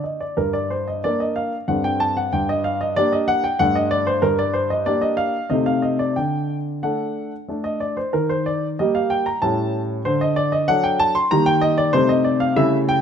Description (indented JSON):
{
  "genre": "classical-period piano sonatina",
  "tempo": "94 BPM",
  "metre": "3/4",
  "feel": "rubato",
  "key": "G minor",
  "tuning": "A4 = 439 Hz",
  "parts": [
    { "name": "warm grand piano", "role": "solo", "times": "0.0-13.0 s", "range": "G2 to C6", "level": "-18 LUFS", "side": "equal", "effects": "none" }
  ],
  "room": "moderate recital hall reverb, RT60 1.6 s",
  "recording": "close, detailed microphones",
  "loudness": "-18 LUFS",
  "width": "side -8 dB against mid",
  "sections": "0.4-13.0 A section",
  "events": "none",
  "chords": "0.4 Gm; 1.7 D5/G; 2.3 Gm; 3.6 D5/G; 4.2 Gm; 5.5 Adim/C; 6.2 D; 8.1 Eb; 9.4 A7; 10.1 D; 11.3 Eb; 11.9 Am7b5/C"
}